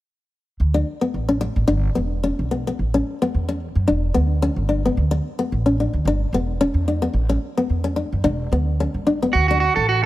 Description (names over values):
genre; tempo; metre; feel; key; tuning
highlife; 110 BPM; 4/4; swing 54% on 16ths; D major; A4 = 444 Hz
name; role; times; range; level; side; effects
upright bass; bass; 0.6-10.1 s; E1 to F#2; -21 LUFS; equal; none
nylon-string guitar; accompaniment; 0.7-9.7 s; B3 to D4; -22 LUFS; left 2 dB; none
electric guitar at the edge of break-up; arpeggios; 9.3-10.1 s; F#4 to A4; -17 LUFS; right 5 dB; spring reverb, slapback echo
room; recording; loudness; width
light reverb, small room ambience; none; -18 LUFS; side -15 dB against mid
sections
0.6-9.3 A section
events
none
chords
0.6 D5; 1.7 G; 2.8 Aadd9; 3.9 Em7; 5.0 D5; 6.1 G; 7.2 Aadd9; 8.2 Em7; 9.3 D